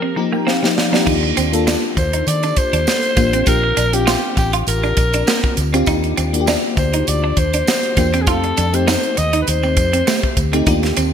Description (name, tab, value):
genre	polished 1980s jazz-funk pop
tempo	100 BPM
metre	4/4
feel	swing 54% on 16ths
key	unclear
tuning	A4 = 441 Hz
part	growling alto saxophone	melody	0.0-10.4 s	G4 to Eb5	-20 LUFS	left 1 dB	digital delay
part	FM electric piano with soft pad layer	accompaniment	0.0-11.1 s	F3 to Bb5	-21 LUFS	left 3 dB	lush chorus
part	semi-hollow electric guitar	riff	0.0-11.1 s	A3 to F4	-22 LUFS	right 4 dB	analog chorus
part	tight funk drum kit	drums	0.5-11.1 s	crash cymbal, hi-hat, kick drum, snare drum	-19 LUFS	right 1 dB	gated reverb
part	vintage muted fingered electric bass	bass	1.1-11.1 s	A1 to Eb3	-20 LUFS	equal	none
part	tambourine	percussion	1.1-11.1 s	none	-31 LUFS	right 7 dB	none
room	light reverb, small room ambience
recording	bright 1980s-style digital production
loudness	-14 LUFS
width	side -8 dB against mid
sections	0.0-1.1 A section; 1.1-11.1 B section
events	break 0.0-1.1; FM electric piano fill 0.0-1.1; drum fill 0.5-1.1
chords	0.0 F9sus4; 1.1 Ebmaj7; 3.5 Bb6; 5.9 Ebmaj7; 8.3 F7